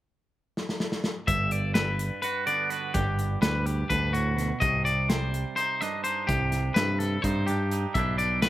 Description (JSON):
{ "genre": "math rock and midwest emo", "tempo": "252 BPM (eighths)", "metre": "7/8", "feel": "straight", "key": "G major", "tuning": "A4 = 442 Hz", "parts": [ { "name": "modern studio drum kit", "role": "drums", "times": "0.6-8.5 s", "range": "hi-hat, kick drum, snare drum", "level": "-30 LUFS", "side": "equal", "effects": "none" }, { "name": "twangy electric guitar", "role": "accompaniment", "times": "1.3-8.5 s", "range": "G2 to G4", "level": "-34 LUFS", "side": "right 10 dB", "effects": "spring reverb, slapback echo" }, { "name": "twangy electric guitar", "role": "arpeggios", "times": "1.3-8.5 s", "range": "F#4 to E5", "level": "-28 LUFS", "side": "left 2 dB", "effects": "spring reverb" }, { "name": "modern bright picked electric bass", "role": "bass", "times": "1.3-8.5 s", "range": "G1 to G2", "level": "-28 LUFS", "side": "equal", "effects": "none" } ], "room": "little or no reverb", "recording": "none", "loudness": "-24 LUFS", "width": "side -14 dB against mid", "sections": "0.0-1.3 A section; 1.3-8.5 B section", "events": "drum fill 0.6-1.3", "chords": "0.0 N.C.; 1.3 Gmaj7; 4.6 Cmadd9; 8.0 Em7/B" }